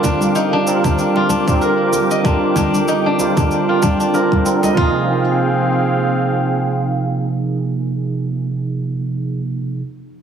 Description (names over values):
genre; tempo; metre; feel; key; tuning
organic downtempo; 95 BPM; 4/4; swing 56% on 16ths; F dorian; A4 = 440 Hz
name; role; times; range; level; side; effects
barky tine electric piano; accompaniment; 0.0-9.8 s; C3 to D5; -18 LUFS; right 3 dB; ensemble chorus, sidechain pumping, low-pass filter, digital delay
warm analog pad; sustained chords; 0.0-8.1 s; C4 to D6; -22 LUFS; equal; chorus, sidechain pumping
steel-string zither; arpeggios; 0.0-7.3 s; D4 to Eb5; -19 LUFS; left 2 dB; low-pass filter, digital delay
cabasa; drums; 0.0-4.7 s; none; -29 LUFS; right 2 dB; none
electronic kick drum; drums; 0.0-4.9 s; none; -18 LUFS; left 1 dB; none
congas; percussion; 0.0-4.7 s; none; -23 LUFS; left 1 dB; none
room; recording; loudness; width
moderate lush hall reverb, RT60 1.9 s, digital ambience; heavily compressed radio sound, multiband compression; -15 LUFS; side -8 dB against mid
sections
0.0-4.8 A section; 4.8-7.3 B section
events
filter sweep on guzheng 0.0-4.8; filter sweep on tine electric piano 0.0-4.8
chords
0.0 Cm11; 4.8 Fmadd9